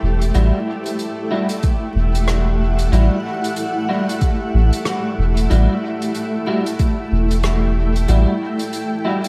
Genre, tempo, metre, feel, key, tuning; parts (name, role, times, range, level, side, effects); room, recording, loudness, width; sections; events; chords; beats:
ambient dub; 93 BPM; 4/4; swing 60% on 16ths; A4 = 440 Hz
granular cloud pad; sustained chords; 0.0-9.3 s; A3 to G5; -24 LUFS; equal; built-in reverb
soft dub sub bass; bass; 0.0-8.3 s; E1 to A1; -17 LUFS; equal
soft-mallet drum kit; drums; 0.2-9.3 s; hi-hat, rim click; -32 LUFS; equal; dub echo
electric guitar at the edge of break-up; stabs; 0.3-9.2 s; G3 to F#4; -28 LUFS; equal; analog chorus, dub echo
electronic kick drum; drums; 1.6-7.0 s; -20 LUFS; equal
moderate church reverb, RT60 2.8 s; dreamy mix soaked in reverb, vinyl crackle; -18 LUFS; mono
0.0-9.3 A section
kick drops out 8.1-9.3
0.3 Emadd9
| 0.35 0.99 1.64 2.28 | 2.93 3.57 4.22 4.86 | 5.51 6.15 6.80 7.44 | 8.09 8.73